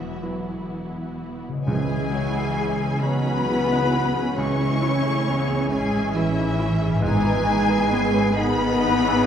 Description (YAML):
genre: cinematic, emotional film score for orchestra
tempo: 45 BPM (dotted quarters)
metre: 6/8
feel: rubato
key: C# minor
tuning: A4 = 438 Hz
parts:
  - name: rich studio violin section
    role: melody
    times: 0.0-9.3 s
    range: E5 to C#6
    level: -28 LUFS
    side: left 4 dB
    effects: none
  - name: dark studio violin section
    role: second line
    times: 0.0-9.3 s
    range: B3 to B4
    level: -32 LUFS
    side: left 1 dB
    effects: none
  - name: bright baby grand piano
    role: accompaniment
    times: 0.0-9.3 s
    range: C#2 to C#5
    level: -30 LUFS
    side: equal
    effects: none
  - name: rich symphonic viola section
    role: accompaniment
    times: 0.0-9.3 s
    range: D#3 to D#4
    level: -30 LUFS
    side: right 2 dB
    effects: none
  - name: concert harp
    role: arpeggios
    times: 0.0-9.3 s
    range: G#2 to C#5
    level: -32 LUFS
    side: left 3 dB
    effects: none
  - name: dark symphonic cello section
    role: bass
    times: 0.0-9.3 s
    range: E2 to C#4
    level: -28 LUFS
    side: right 2 dB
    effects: none
  - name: rich symphonic double bass section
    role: bass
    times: 0.0-9.3 s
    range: E1 to C#2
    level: -28 LUFS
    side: right 2 dB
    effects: none
  - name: dark French horn section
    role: sustained chords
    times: 1.6-9.3 s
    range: E3 to C#4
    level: -27 LUFS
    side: left 1 dB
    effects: none
  - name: flute section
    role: second line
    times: 1.7-9.3 s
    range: E4 to C#5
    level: -29 LUFS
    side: left 3 dB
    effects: none
  - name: timpani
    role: percussion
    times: 1.7-8.3 s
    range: G#2 to C#3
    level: -30 LUFS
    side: right 1 dB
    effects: none
room: wet scoring stage reverb, RT60 1.9 s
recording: heard from further back in the room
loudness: -20 LUFS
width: side -8 dB against mid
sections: 0.0-1.7 A section; 1.7-9.3 B section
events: none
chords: 0.0 Esus2; 1.7 C#madd9; 7.0 G#m